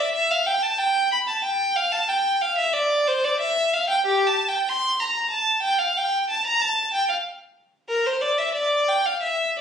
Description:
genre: classical, baroque-style suite movement for unaccompanied violin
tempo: 92 BPM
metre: 3/4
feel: rubato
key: unclear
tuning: A4 = 440 Hz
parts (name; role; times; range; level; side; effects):
- clear violin; solo; 0.0-9.6 s; G4 to C6; -20 LUFS; equal; none
room: moderate studio reverb, RT60 0.7 s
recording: recorded on a phone in the room, studio reverb, compression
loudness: -20 LUFS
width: side -7 dB against mid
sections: 0.0-9.6 A section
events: none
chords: none

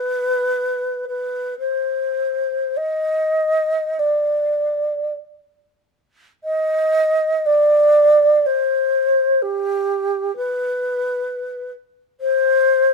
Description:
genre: classical, free, expressive piece for unaccompanied alto flute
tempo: free time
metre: none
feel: none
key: unclear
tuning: A4 = 444 Hz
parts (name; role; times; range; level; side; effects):
- mellow wooden-headed alto flute; solo; 0.0-12.9 s; G4 to Eb5; -16 LUFS; equal; none
room: light reverb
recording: none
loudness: -16 LUFS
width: side -4 dB against mid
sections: 0.0-6.5 A section; 6.5-12.9 B section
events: none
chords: none

